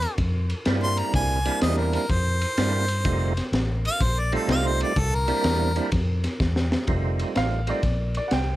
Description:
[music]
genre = electric blues shuffle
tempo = 125 BPM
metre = 4/4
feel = swing 66% on 8ths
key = F major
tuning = A4 = 441 Hz
[part]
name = clear harmonica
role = melody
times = 0.0-6.1 s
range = A4 to C6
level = -27 LUFS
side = left 1 dB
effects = none
[part]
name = vintage muted fingered electric bass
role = bass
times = 0.0-8.6 s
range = F1 to G2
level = -25 LUFS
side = equal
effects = none
[part]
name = crunchy breakbeat drum kit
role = drums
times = 0.0-8.5 s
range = kick drum, ride cymbal, snare drum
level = -27 LUFS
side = equal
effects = none
[part]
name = percussive tonewheel organ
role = accompaniment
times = 0.7-7.8 s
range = G3 to F4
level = -27 LUFS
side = right 5 dB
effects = slow rotary speaker, overdrive
[part]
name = warm upright piano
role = second line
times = 7.4-8.6 s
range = D5 to G5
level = -29 LUFS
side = right 2 dB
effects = none
[sound]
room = little or no reverb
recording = none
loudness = -21 LUFS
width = side -15 dB against mid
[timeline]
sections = 0.0-6.9 A section; 6.9-8.6 A section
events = harmonica solo 0.0-6.9; drum fill 6.4-6.9; upright piano solo 6.9-8.6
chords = 0.0 C9; 3.1 F9; 5.0 C9; 6.9 F9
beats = 0.18 0.66 | 1.14 1.62 2.10 2.57 | 3.05 3.53 4.01 4.49 | 4.96 5.44 5.92 6.40 | 6.88 7.36 7.84 8.32

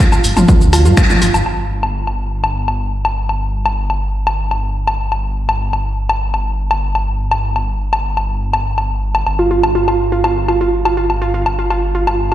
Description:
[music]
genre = melodic techno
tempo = 123 BPM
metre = 4/4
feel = straight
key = unclear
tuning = A4 = 441 Hz
[part]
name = woody wave-folded pluck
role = arpeggios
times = 0.0-1.3, 9.4-12.3 s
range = F4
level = -17 LUFS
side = right 3 dB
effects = chorus, sidechain pumping, dub echo
[part]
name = electronic kick drum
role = drums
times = 0.0-1.1 s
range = none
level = -11 LUFS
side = equal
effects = none
[part]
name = punchy analog drum machine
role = drums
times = 0.0-12.3 s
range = finger snaps, hi-hat, shaker, toms, woodblock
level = -18 LUFS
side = left 2 dB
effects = low-pass filter on toms, low-pass filter on perc, low-pass filter on snare, low-pass filter on hats, low-pass filter on room
[part]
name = swelling detuned saw bass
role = bass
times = 0.2-12.3 s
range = G1 to G2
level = -18 LUFS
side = equal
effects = sidechain pumping
[sound]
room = moderate lush hall reverb, RT60 1.6 s, digital ambience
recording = played on a big sound system in a bare room, large studio reverb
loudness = -13 LUFS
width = side -12 dB against mid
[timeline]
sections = 0.0-1.5 A section; 1.5-12.3 B section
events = band accent 1.0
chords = 0.0 Dmadd11/G; 1.5 N.C.; 9.3 Fsus2/G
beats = 0.00 0.48 0.97 | 1.46 1.95 2.44 2.92 | 3.41 3.90 4.39 4.88 | 5.36 5.85 6.34 6.83 | 7.31 7.80 8.29 8.78 | 9.27 9.75 10.24 10.73 | 11.22 11.70 12.19

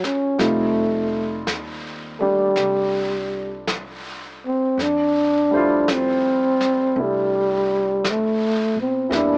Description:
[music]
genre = jazz ballad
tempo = 55 BPM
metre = 4/4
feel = swing 68% on 8ths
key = F major from 4.8 s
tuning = A4 = 440 Hz
[part]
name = breathy trombone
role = melody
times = 0.0-9.4 s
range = G3 to D4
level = -18 LUFS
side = equal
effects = none
[part]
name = warm upright piano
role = accompaniment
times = 0.0-9.4 s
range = Db3 to C5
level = -26 LUFS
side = equal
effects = none
[part]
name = upright bass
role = bass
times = 0.0-9.4 s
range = F1 to B2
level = -36 LUFS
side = equal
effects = none
[part]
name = vintage brush drum kit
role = drums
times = 0.0-9.4 s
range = brushed snare drum, hi-hat, snare drum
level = -29 LUFS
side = equal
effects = none
[sound]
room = light reverb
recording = small speaker sound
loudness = -18 LUFS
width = side -37 dB against mid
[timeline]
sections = 0.0-4.8 A section; 4.8-9.4 B section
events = none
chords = 0.4 F9; 4.8 Fmaj9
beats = | 0.39 1.47 2.56 3.67 | 4.78 5.88 6.96 8.04 | 9.11

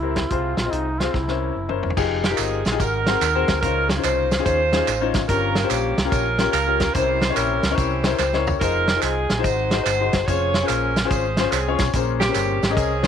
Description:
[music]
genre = uptempo gospel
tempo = 144 BPM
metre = 4/4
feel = swing 66% on 8ths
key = F minor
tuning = A4 = 440 Hz
[part]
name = warm duduk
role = melody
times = 0.0-1.8 s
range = Eb4 to F4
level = -27 LUFS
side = right 2 dB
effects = none
[part]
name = clear upright piano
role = accompaniment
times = 0.0-13.1 s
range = G2 to Eb5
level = -24 LUFS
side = left 11 dB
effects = none
[part]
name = fingered electric bass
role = bass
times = 0.0-13.1 s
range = F1 to Eb2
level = -26 LUFS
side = right 1 dB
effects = none
[part]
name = warm soul drum kit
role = drums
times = 0.2-13.1 s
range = crash cymbal, hi-hat, kick drum, snare drum, toms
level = -24 LUFS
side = right 1 dB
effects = none
[part]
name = tambourine and handclaps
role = percussion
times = 2.0-13.1 s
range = none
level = -31 LUFS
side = right 16 dB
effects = none
[part]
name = mellow saxophone section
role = melody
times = 2.2-13.1 s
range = Bb3 to Db5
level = -22 LUFS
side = right 2 dB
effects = none
[sound]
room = moderate spring reverb, RT60 1.9 s, studio reverb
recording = 1960s-style stereo with parts hard left and right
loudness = -18 LUFS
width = side -8 dB against mid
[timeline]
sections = 0.0-2.0 A section; 2.0-13.1 B section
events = drum fill 1.1-2.0, 8.2-8.6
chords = 0.3 Fm; 1.1 C7b9; 2.0 Fm9; 2.8 Ab9; 3.6 Dbmaj9; 5.3 Gm7b5; 6.9 C7b9; 8.6 Fm7; 9.4 Ab7; 10.3 Dbmaj7/F; 11.9 Bbm9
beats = | 0.31 0.72 1.14 1.55 | 1.97 2.38 2.80 3.21 | 3.63 4.04 4.46 4.87 | 5.29 5.70 6.12 6.53 | 6.95 7.36 7.78 8.19 | 8.61 9.03 9.44 9.86 | 10.27 10.69 11.10 11.52 | 11.94 12.35 12.77

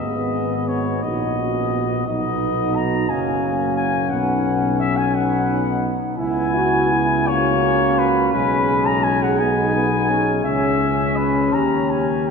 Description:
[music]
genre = classical, hymn-like piece for brass band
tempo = 57 BPM (dotted quarters)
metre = 6/8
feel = uneven beats, rubato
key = G# minor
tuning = A4 = 440 Hz
[part]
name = clear flugelhorn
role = melody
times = 0.0-12.3 s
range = B4 to A#5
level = -22 LUFS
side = left 4 dB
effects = none
[part]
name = mellow French horn section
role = second line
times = 0.0-12.3 s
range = D#4 to G#4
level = -25 LUFS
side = right 4 dB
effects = none
[part]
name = clear trombone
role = accompaniment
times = 0.0-12.3 s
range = G#3 to C#4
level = -26 LUFS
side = right 4 dB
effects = none
[part]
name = warm trombone section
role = accompaniment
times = 0.0-12.3 s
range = B3 to F#4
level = -23 LUFS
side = left 2 dB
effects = none
[part]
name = dark tuba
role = bass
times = 0.0-12.3 s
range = F#1 to D#2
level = -24 LUFS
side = equal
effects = none
[sound]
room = wet church reverb, RT60 3.0 s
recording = recorded in a church or concert hall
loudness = -17 LUFS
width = side -5 dB against mid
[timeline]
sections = 0.0-12.3 A section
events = none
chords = 0.0 G#m; 2.1 B; 3.1 F#; 4.1 B; 6.2 C#m7; 8.3 G#m/B; 10.4 C#m; 11.5 D#7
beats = 1.04 | 2.06 3.09 | 4.11 5.14 | 6.17 7.28 | 8.34 9.39 | 10.44 11.54

